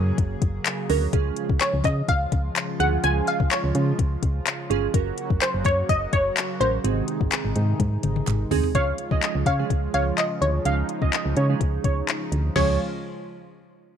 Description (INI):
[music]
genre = dance-pop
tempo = 126 BPM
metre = 4/4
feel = straight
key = Db major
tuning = A4 = 441 Hz
[part]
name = wide unison pluck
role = melody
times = 0.0-12.8 s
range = C5 to Ab5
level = -26 LUFS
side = left 2 dB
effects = low-pass filter
[part]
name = chorused pulse-width pad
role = sustained chords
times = 0.0-12.8 s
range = C3 to Ab4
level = -32 LUFS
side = right 1 dB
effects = sidechain pumping, low-pass filter
[part]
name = solid FM bass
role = bass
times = 0.0-12.8 s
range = Gb1 to Db3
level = -24 LUFS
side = equal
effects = sidechain pumping
[part]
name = smooth R&B drum kit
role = drums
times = 0.2-12.7 s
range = crash cymbal, handclaps, hi-hat, kick drum, snare drum, toms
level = -25 LUFS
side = left 4 dB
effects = none
[part]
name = group handclap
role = percussion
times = 0.7-8.4 s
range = none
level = -37 LUFS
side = right 16 dB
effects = none
[part]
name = glassy digital keys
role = accompaniment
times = 0.9-12.8 s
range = F3 to Bb4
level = -28 LUFS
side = right 16 dB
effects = chorus, sidechain pumping, low-pass filter
[part]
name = wide unison lead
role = melody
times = 8.8-12.8 s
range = Db5 to F5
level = -30 LUFS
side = right 4 dB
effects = low-pass filter, tape echo
[sound]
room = light reverb, digital ambience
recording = 1960s-style stereo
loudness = -21 LUFS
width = side -8 dB against mid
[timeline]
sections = 0.0-8.8 A section; 8.8-12.6 B section; 12.6-14.0 C section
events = drum fill 7.8-8.8; filter sweep 8.8-12.6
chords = 0.0 Gb; 1.1 Db; 4.9 Gb; 6.8 Ab; 8.8 Db